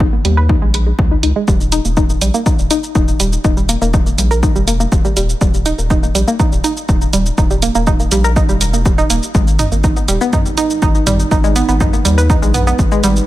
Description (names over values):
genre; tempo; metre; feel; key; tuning
melodic techno; 122 BPM; 4/4; straight; G# harmonic minor; A4 = 440 Hz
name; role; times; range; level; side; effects
analog pluck; arpeggios; 0.0-13.1 s; G3 to B4; -17 LUFS; right 1 dB; chorus, sidechain pumping, ping-pong delay
round analog bass; bass; 0.0-13.2 s; D#1 to D#2; -17 LUFS; equal; sidechain pumping
electronic kick drum; drums; 0.0-12.9 s; none; -14 LUFS; equal; overdrive, studio reverb
punchy analog drum machine; drums; 0.2-13.3 s; hi-hat, shaker, toms; -21 LUFS; right 2 dB; sidechain pumping on hats, studio reverb, sidechain pumping on perc, sidechain pumping on toms
dark analog pad; sustained chords; 10.3-13.3 s; G#3 to B4; -23 LUFS; right 4 dB; chorus, phaser, sidechain pumping
room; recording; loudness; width
digital ambience; none; -11 LUFS; side -15 dB against mid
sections
0.0-13.3 A section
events
filter sweep on synth arpeggio sound 0.0-13.3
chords
0.0 G#5; 1.5 D#; 9.3 G#m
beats
0.00 0.49 0.99 | 1.48 1.97 2.46 2.95 | 3.44 3.94 4.43 4.92 | 5.41 5.90 6.40 6.89 | 7.38 7.87 8.36 8.86 | 9.35 9.84 10.33 10.82 | 11.31 11.81 12.30 12.79